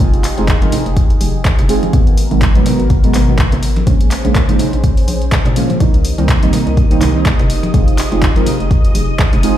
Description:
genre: deep house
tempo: 124 BPM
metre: 4/4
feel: swing 57% on 16ths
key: unclear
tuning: A4 = 441 Hz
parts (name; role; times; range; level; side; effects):
- dark analog pad; sustained chords; 0.0-9.6 s; Cb4 to C5; -25 LUFS; equal; chorus, sidechain pumping
- deep mellow chord stab; stabs; 0.0-9.6 s; Cb3 to Bb4; -17 LUFS; right 2 dB; chorus, sidechain pumping, ping-pong delay
- hollow knocking FM bass; bass; 0.0-9.6 s; F1 to Bb2; -17 LUFS; equal; sidechain pumping
- electronic kick drum; drums; 0.0-9.3 s; none; -12 LUFS; equal; overdrive
- punchy analog drum machine; drums; 0.0-9.5 s; handclaps, hi-hat; -22 LUFS; equal; none
- congas; percussion; 0.4-9.4 s; none; -23 LUFS; right 1 dB; none
- soft string machine; texture; 6.0-9.6 s; Eb5 to Eb6; -28 LUFS; equal; phaser, ensemble chorus, sidechain pumping
room: little or no reverb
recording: played on a big sound system in a bare room, large studio reverb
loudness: -10 LUFS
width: side -11 dB against mid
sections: 0.0-9.6 A section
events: none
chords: 0.0 Fm7; 1.9 Abm7; 3.9 Bbm7; 5.8 Cm7; 7.5 Fm7

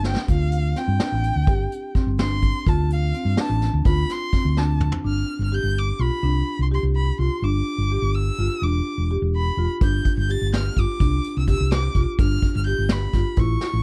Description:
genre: progressive instrumental, band music in an uneven meter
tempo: 252 BPM (eighths)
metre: 5/8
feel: straight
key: unclear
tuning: A4 = 440 Hz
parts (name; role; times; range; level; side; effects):
- rich violin; melody; 0.0-13.8 s; F5 to A6; -32 LUFS; equal; none
- marimba with medium mallets; arpeggios; 0.0-13.8 s; C4 to G4; -30 LUFS; equal; none
- hollow-body short-scale fingered electric bass; bass; 0.0-13.8 s; E1 to G2; -24 LUFS; equal; none
- vintage brush drum kit; drums; 0.0-5.0, 9.8-13.7 s; hi-hat, kick drum, snare drum, toms; -25 LUFS; equal; none
room: little or no reverb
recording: dark, warm production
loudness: -22 LUFS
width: mono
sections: 0.0-5.1 A section; 5.1-13.8 B section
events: violin solo 0.0-5.1; drum fill 0.1, 4.6-5.1, 13.6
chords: 0.3 Dm7; 1.5 Gsus4; 2.7 Dm7; 5.1 G7(no3); 6.2 Csus2; 7.4 G5; 8.6 Em7; 9.8 G5; 11.0 Csus2; 12.2 G7

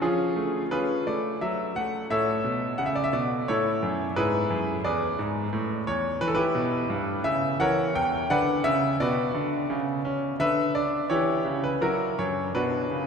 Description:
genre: classical, baroque-style suite movement for grand piano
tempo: 86 BPM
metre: 3/4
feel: rubato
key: B minor from 6.2 s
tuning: A4 = 440 Hz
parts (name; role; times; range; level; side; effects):
- bright grand piano; solo; 0.0-13.1 s; E2 to G5; -24 LUFS; equal; none
room: wet cathedral reverb, RT60 6.0 s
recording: heard from further back in the room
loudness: -24 LUFS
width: side -6 dB against mid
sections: 0.0-13.1 A section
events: none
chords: 0.0 C#/E#; 1.4 F#m; 2.1 A; 4.2 E; 5.5 A; 6.2 Em; 7.6 F#7/E; 8.3 Bm; 9.7 N.C.; 10.4 Bm/D; 11.1 C#dim/E; 11.8 F#7; 12.5 Bm

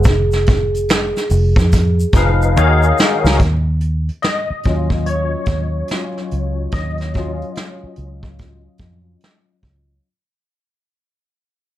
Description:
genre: R&B, neo-soul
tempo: 72 BPM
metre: 4/4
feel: swing 63% on 16ths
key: Eb minor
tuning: A4 = 440 Hz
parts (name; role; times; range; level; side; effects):
- vibraphone with soft mallets; melody; 0.0-2.5 s; Ab4; -21 LUFS; right 2 dB; none
- barky tine electric piano; accompaniment; 0.0-10.1 s; Eb3 to F5; -20 LUFS; left 4 dB; ensemble chorus
- vintage muted fingered electric bass; bass; 0.0-10.0 s; F1 to F2; -17 LUFS; equal; none
- vintage brush drum kit; drums; 0.0-9.9 s; hi-hat, kick drum, snare drum; -17 LUFS; equal; none
- egg shaker and finger snaps; percussion; 0.0-3.4 s; none; -31 LUFS; right 3 dB; none
room: light reverb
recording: dark, warm production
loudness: -14 LUFS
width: side -13 dB against mid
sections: 0.0-3.4 A section; 3.4-10.1 B section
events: drum fill 2.6-3.4; fade-out 3.4-10.1; tine electric piano solo 3.4-10.1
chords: 0.1 Fm7b5; 2.6 Ebm11; 3.4 Ebm9

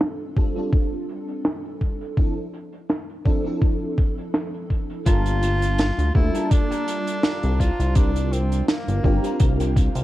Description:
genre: vaporwave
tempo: 83 BPM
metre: 4/4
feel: swing 55% on 16ths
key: G dorian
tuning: A4 = 440 Hz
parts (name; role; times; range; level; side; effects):
- FM electric piano with soft pad layer; accompaniment; 0.0-10.0 s; F3 to A5; -28 LUFS; equal; ensemble chorus, tape echo
- crisp fusion drum kit; drums; 0.0-10.0 s; hi-hat, snare drum; -26 LUFS; right 1 dB; low-pass filter on hats, low-pass filter on snare, low-pass filter on room
- electronic kick drum; drums; 0.4-9.9 s; none; -20 LUFS; equal; overdrive
- breathy tenor saxophone; melody; 5.1-9.7 s; Bb3 to F4; -29 LUFS; equal; vintage 12-bit sampler grit, tape echo
- electric guitar at the edge of break-up; riff; 5.1-10.0 s; D4 to G5; -34 LUFS; equal; lush chorus, tape echo
- chorused synth bass; bass; 5.1-10.0 s; G1 to D2; -22 LUFS; equal; none
room: small room ambience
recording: dark, warm production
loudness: -20 LUFS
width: side -15 dB against mid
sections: 0.0-5.1 A section; 5.1-10.0 B section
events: clean electric guitar fill 8.7-10.0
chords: 0.0 F6; 2.2 Dm9; 5.1 Gm9; 7.6 C9sus4

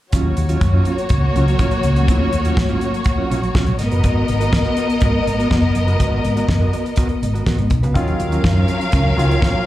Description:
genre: disco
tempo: 123 BPM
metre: 4/4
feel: straight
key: Eb minor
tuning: A4 = 437 Hz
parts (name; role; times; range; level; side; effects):
- warm studio string section; second line; 0.1-9.7 s; Bb3 to F5; -21 LUFS; left 2 dB; slapback echo
- mellow electric guitar; accompaniment; 0.1-9.6 s; Gb3 to Cb5; -25 LUFS; right 5 dB; harmonic tremolo, slapback echo
- hollow-body short-scale fingered electric bass; bass; 0.1-9.6 s; Gb1 to Gb2; -18 LUFS; equal; none
- damped 70s drum kit; drums; 0.1-9.5 s; hi-hat, kick drum, snare drum; -19 LUFS; equal; none
- warm grand piano; accompaniment; 7.9-9.7 s; Eb3 to F4; -23 LUFS; left 3 dB; slapback echo
room: light reverb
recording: live gig heard through the venue's PA, club reverb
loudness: -15 LUFS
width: side -14 dB against mid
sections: 0.1-9.7 A section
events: none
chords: 0.1 Ebm9; 3.8 Abm9; 8.0 Ebm9

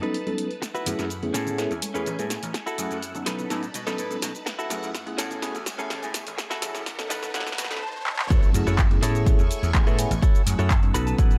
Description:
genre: filtered disco house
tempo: 125 BPM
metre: 4/4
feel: straight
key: F# dorian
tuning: A4 = 439 Hz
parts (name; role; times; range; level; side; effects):
- bell-like tine electric piano; accompaniment; 0.0-11.3 s; F#3 to B4; -34 LUFS; equal; phaser, sidechain pumping, low-pass filter
- phased string machine; sustained chords; 0.0-11.4 s; A3 to E6; -41 LUFS; equal; ensemble chorus, phaser, vintage 12-bit sampler grit, sidechain pumping, low-pass filter
- direct-recorded clean electric guitar; riff; 0.0-11.4 s; C#4 to B5; -34 LUFS; equal; vintage 12-bit sampler grit, sidechain pumping, low-pass filter
- punchy analog drum machine; drums; 0.0-11.4 s; cabasa, handclaps, hi-hat, snare drum; -33 LUFS; equal; sidechain pumping on hats, sidechain pumping on perc
- tambourine and congas; percussion; 0.0-7.8 s; none; -45 LUFS; equal; none
- riser and impact; sound effects; 3.7-10.2 s; none; -39 LUFS; equal; none
- vintage slap bass; bass; 0.9-11.4 s; A1 to B2; -32 LUFS; equal; sidechain pumping, low-pass filter
- electronic kick drum; drums; 8.3-11.3 s; none; -22 LUFS; equal; none
room: digital ambience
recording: high-pass filter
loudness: -25 LUFS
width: mono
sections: 0.0-8.3 A section; 8.3-11.4 B section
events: build-up 0.0-8.3; filter sweep 0.0-8.3; drum fill 0.6-7.8, 8.1; clean electric guitar fill 6.9-8.3, 10.7-11.4; drop 8.3-11.4; impact 8.3-10.2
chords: 0.0 B7; 0.6 F#m7; 1.3 Amaj7; 2.5 F#m7; 3.3 B7; 4.5 F#m7; 5.2 Amaj7; 6.4 F#m7; 7.1 B7; 8.3 F#m7; 9.0 Amaj7; 10.2 F#m7

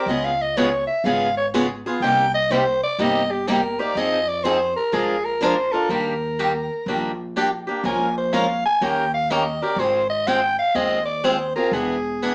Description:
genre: acoustic string swing (jazz manouche)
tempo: 123 BPM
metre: 4/4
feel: swing 65% on 8ths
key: C minor, Eb major from 5.9 s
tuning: A4 = 441 Hz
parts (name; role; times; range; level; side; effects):
- growling soprano saxophone; second line; 0.0-12.3 s; G4 to Ab5; -24 LUFS; equal; none
- picked swing-style acoustic guitar; accompaniment; 0.0-12.3 s; C3 to Bb4; -25 LUFS; equal; none
- picked steel-string acoustic guitar; accompaniment; 0.1-5.5 s; C3 to Bb4; -28 LUFS; equal; none
- upright bass; bass; 0.1-12.3 s; E1 to F2; -34 LUFS; equal; none
room: wet studio reverb, RT60 0.6 s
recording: heard from further back in the room, small speaker sound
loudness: -21 LUFS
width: mono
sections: 0.0-5.9 A section; 5.9-12.3 A section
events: soprano saxophone solo 0.0-12.3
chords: 0.1 Db7; 2.0 Cm7; 4.0 Fm7; 4.9 Bb7; 5.9 Ebmaj7; 7.8 Bbm7; 8.8 Eb7; 9.8 Ab6; 11.7 E7

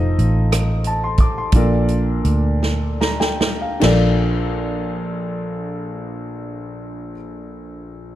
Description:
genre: slow gospel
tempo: 47-62 BPM (dotted quarters)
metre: 6/8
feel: straight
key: Bb major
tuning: A4 = 441 Hz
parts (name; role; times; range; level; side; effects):
- warm grand piano; accompaniment; 0.0-8.2 s; Bb1 to D6; -22 LUFS; left 1 dB; none
- vintage muted fingered electric bass; bass; 0.0-7.1 s; F1 to D2; -19 LUFS; right 1 dB; none
- swinging big-band drum kit; drums; 0.2-4.0 s; crash cymbal, hi-hat, kick drum, rim click, snare drum; -20 LUFS; right 1 dB; none
room: light reverb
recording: dark, warm production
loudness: -16 LUFS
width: side -13 dB against mid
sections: 0.0-3.8 A section; 3.8-8.2 B section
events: slowing down 0.0-3.8; drum fill 2.6-3.8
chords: 0.0 F7; 1.5 Bbmaj7

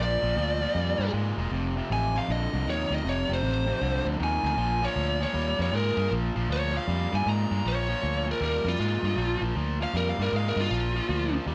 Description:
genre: electric blues shuffle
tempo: 157 BPM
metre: 4/4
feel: swing 64% on 8ths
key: Bb mixolydian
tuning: A4 = 441 Hz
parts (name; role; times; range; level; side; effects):
- biting lead guitar; melody; 0.0-11.3 s; F4 to Bb5; -31 LUFS; equal; overdrive
- cranked stack guitar; riff; 0.0-11.5 s; F2 to Ab3; -34 LUFS; equal; overdrive
- vintage muted fingered electric bass; bass; 0.0-11.5 s; E1 to Ab2; -31 LUFS; equal; none
room: light reverb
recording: none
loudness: -27 LUFS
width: mono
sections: 0.0-7.6 A section; 7.6-11.5 A section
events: lead electric guitar solo 0.0-7.6, 7.6-11.5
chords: 0.0 Bb6; 1.5 F6; 4.6 Bb6

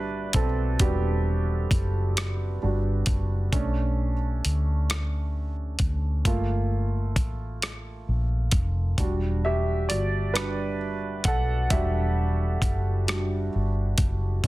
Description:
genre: slow six-eight R&B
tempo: 44 BPM (dotted quarters)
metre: 6/8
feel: straight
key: E minor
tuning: A4 = 438 Hz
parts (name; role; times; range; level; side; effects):
- warm concert grand piano; accompaniment; 0.0-14.5 s; G3 to F#5; -30 LUFS; right 2 dB; none
- vintage muted fingered electric bass; bass; 0.0-14.5 s; E1 to D2; -26 LUFS; equal; none
- dusty soul sampler-style drum kit; drums; 0.3-14.5 s; hi-hat, kick drum, rim click; -25 LUFS; equal; soft clipping on snare
room: little or no reverb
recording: dense, heavily limited modern master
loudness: -23 LUFS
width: side -18 dB against mid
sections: 0.0-14.5 A section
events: grand piano solo 0.0-14.5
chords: 0.0 Em9; 3.5 Bm9; 6.3 Gm9; 9.0 Em9

